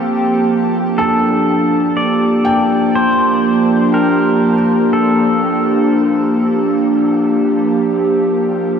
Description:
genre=ambient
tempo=61 BPM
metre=4/4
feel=straight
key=G minor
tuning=A4 = 440 Hz
part: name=pedal steel guitar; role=melody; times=0.0-7.9 s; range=G4 to D5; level=-19 LUFS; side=left 1 dB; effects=shimmer reverb, diffuse ambient delay
part: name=evolving wavetable pad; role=sustained chords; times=0.0-8.8 s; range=F3 to A5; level=-13 LUFS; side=right 1 dB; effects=chorus, built-in reverb, shimmer reverb
part: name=felt-muted upright piano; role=arpeggios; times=0.0-8.8 s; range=G5 to A5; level=-25 LUFS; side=left 2 dB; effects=shimmer reverb, diffuse ambient delay
room=wet huge ambient reverb, RT60 7.9 s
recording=in a vast, echoing space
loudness=-12 LUFS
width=side -7 dB against mid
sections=0.0-8.8 A section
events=none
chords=0.0 Gm11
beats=0.01 | 0.99 1.97 2.95 3.94 | 4.92 5.92 6.91 7.92

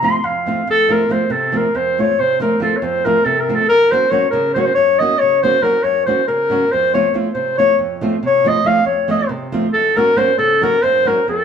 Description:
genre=balkan folk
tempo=278 BPM (eighths)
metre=7/8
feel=straight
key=F phrygian dominant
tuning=A4 = 440 Hz
part: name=mellow clarinet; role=melody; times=0.0-11.4 s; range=A4 to C6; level=-14 LUFS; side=left 1 dB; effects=none
part: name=flamenco guitar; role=accompaniment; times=0.0-11.4 s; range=F2 to Gb4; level=-20 LUFS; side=right 2 dB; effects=none
room=wet stone room reverb, RT60 1.1 s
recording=band playing live in one room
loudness=-13 LUFS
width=side -7 dB against mid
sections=0.7-11.4 A section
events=none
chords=0.0 F; 3.7 Gb; 6.7 F; 9.7 Gb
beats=0.05 0.26 0.48 | 0.69 0.90 1.12 1.33 1.55 1.76 1.98 | 2.19 2.40 2.62 2.83 3.05 3.26 3.48 | 3.69 3.91 4.12 4.34 4.56 4.77 4.99 | 5.20 5.42 5.63 5.85 6.07 6.28 6.50 | 6.71 6.93 7.15 7.36 7.58 7.80 8.01 | 8.23 8.45 8.66 8.88 9.10 9.31 9.53 | 9.75 9.97 10.18 10.40 10.62 10.84 11.05 | 11.27

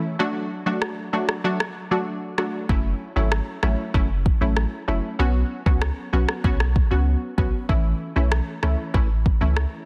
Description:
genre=dancehall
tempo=96 BPM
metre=4/4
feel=straight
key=F# minor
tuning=A4 = 440 Hz
part: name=punchy chord stab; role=accompaniment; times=0.0-9.8 s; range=E3 to F#4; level=-28 LUFS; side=equal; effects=chorus, sidechain pumping
part: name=afro-pop drum kit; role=drums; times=0.8-9.7 s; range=kick drum, rim click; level=-26 LUFS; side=equal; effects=soft clipping on snare
part: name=punchy sub bass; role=bass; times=2.7-9.7 s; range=F#1 to C#2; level=-24 LUFS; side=equal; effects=none
room=light reverb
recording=dense, heavily limited modern master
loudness=-23 LUFS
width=mono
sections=0.0-9.9 A section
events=break 0.0-2.7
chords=0.2 D; 2.7 F#m7; 5.2 Bsus2; 7.7 A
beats=| 0.19 0.82 1.44 2.07 | 2.69 3.32 3.94 4.57 | 5.19 5.82 6.44 7.07 | 7.69 8.32 8.94 9.57

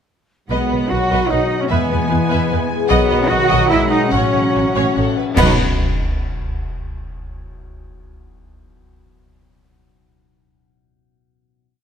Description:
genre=cinematic, heroic adventure film score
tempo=149 BPM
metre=3/4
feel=straight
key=B major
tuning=A4 = 441 Hz
part: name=warm symphonic violin section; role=melody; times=0.5-5.6 s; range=F#5 to G#5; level=-26 LUFS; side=left 2 dB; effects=none
part: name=mellow cor anglais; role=second line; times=0.5-5.6 s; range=B3 to B4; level=-25 LUFS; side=right 2 dB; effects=none
part: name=mellow hollow silver concert flute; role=second line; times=0.5-5.6 s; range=B4 to B5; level=-27 LUFS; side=left 1 dB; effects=none
part: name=warm symphonic violin section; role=second line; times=0.5-5.6 s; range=F#4 to F#5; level=-28 LUFS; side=left 3 dB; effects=none
part: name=rich symphonic viola section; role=accompaniment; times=0.5-5.6 s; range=B4 to D#5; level=-25 LUFS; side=equal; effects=none
part: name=clear trombone section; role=sustained chords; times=0.5-5.5 s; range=B2 to G#3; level=-26 LUFS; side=right 3 dB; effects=none
part: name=mellow French horn section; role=sustained chords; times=0.5-5.5 s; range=D#3 to F#4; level=-24 LUFS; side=left 5 dB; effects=none
part: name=concert harp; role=arpeggios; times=0.5-5.6 s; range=A2 to E5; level=-23 LUFS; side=left 9 dB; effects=none
part: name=dark symphonic double bass section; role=bass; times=0.5-5.6 s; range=A1 to E2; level=-21 LUFS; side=right 3 dB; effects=none
part: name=warm symphonic cello section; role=bass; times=0.5-5.6 s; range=B3 to F#4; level=-20 LUFS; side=right 2 dB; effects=none
part: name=cymbal swell, clash cymbals and concert bass drum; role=percussion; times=2.9-6.1 s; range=none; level=-22 LUFS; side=equal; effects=none
room=moderate concert hall reverb, RT60 2.0 s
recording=none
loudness=-14 LUFS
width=side -7 dB against mid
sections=0.5-5.4 theme; 5.4-6.6 final chord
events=band accent 5.4-5.8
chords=0.5 B; 1.7 E; 2.9 B; 4.1 F#m/A; 5.4 B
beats=| 0.50 0.90 1.30 | 1.70 2.10 2.50 | 2.90 3.30 3.71 | 4.13 4.55 4.97 | 5.39 5.79

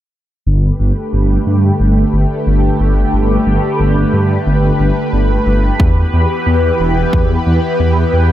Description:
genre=synthwave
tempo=90 BPM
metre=4/4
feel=straight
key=G major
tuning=A4 = 440 Hz
part: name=analog string pad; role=sustained chords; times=0.6-8.3 s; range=D3 to B4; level=-15 LUFS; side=equal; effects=ensemble chorus, phaser, sidechain pumping
part: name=wide detuned saw bass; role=bass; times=0.5-8.3 s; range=E1 to G2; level=-12 LUFS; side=equal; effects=chorus
part: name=electronic kick drum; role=drums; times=5.8-7.3 s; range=none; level=-13 LUFS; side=equal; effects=none
room=light reverb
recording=none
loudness=-11 LUFS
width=side -12 dB against mid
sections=0.5-8.3 A section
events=filter sweep on detuned saw bass 0.5-8.3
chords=0.5 Gadd9; 5.8 Em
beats=| 0.46 1.13 1.80 2.46 | 3.13 3.80 4.46 5.13 | 5.80 6.46 7.13 7.80

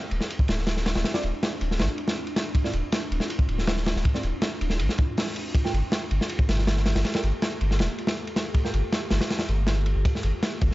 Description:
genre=drum and bass, jungle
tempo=160 BPM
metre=4/4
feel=straight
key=D minor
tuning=A4 = 442 Hz
part: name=ethereal airy pad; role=sustained chords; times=0.0-10.7 s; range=Bb3 to A4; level=-36 LUFS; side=equal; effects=ensemble chorus, built-in reverb
part: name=saturated sub bass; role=bass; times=0.1-10.7 s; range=D1 to A1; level=-25 LUFS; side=equal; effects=none
part: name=crunchy breakbeat drum kit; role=drums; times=0.1-10.7 s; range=hi-hat, kick drum, ride cymbal, snare drum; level=-25 LUFS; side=equal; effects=none
part: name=deep mellow chord stab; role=stabs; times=1.1-8.7 s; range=C4 to G5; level=-36 LUFS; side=right 3 dB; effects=chorus, phaser, vintage 12-bit sampler grit, dub echo
room=small room ambience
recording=dark, warm production, nothing above 7.7 kHz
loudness=-23 LUFS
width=side -18 dB against mid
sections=0.0-10.7 A section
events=none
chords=0.0 Dm9; 5.5 Gm9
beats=0.30 0.67 | 1.05 1.42 1.80 2.17 | 2.55 2.92 3.30 3.67 | 4.05 4.42 4.80 5.17 | 5.55 5.92 6.30 6.67 | 7.05 7.42 7.80 8.17 | 8.55 8.92 9.30 9.67 | 10.05 10.42

